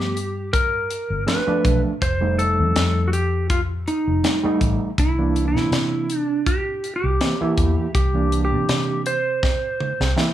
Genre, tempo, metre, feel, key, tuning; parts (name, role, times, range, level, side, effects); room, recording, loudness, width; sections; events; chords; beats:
straight-eighth soul blues; 81 BPM; 4/4; swing 55% on 16ths; C mixolydian; A4 = 439 Hz
clean lap steel guitar; melody; 0.0-10.1 s; Eb4 to C5; -23 LUFS; right 1 dB
overdriven reed electric piano; accompaniment; 0.0-10.3 s; E3 to E4; -24 LUFS; right 3 dB; fast tremolo
vintage muted fingered electric bass; bass; 0.0-10.1 s; F1 to C3; -23 LUFS; equal
tight funk drum kit; drums; 0.0-10.3 s; hi-hat, kick drum, snare drum, toms; -24 LUFS; left 1 dB
light reverb; studio reverb; -18 LUFS; side -12 dB against mid
0.0-10.3 A section
drum fill 9.4-10.3
0.0 G7; 2.0 F7; 5.0 C7
0.53 1.27 | 2.01 2.76 3.50 4.24 | 4.98 5.72 6.46 7.20 | 7.95 8.69 9.43 10.17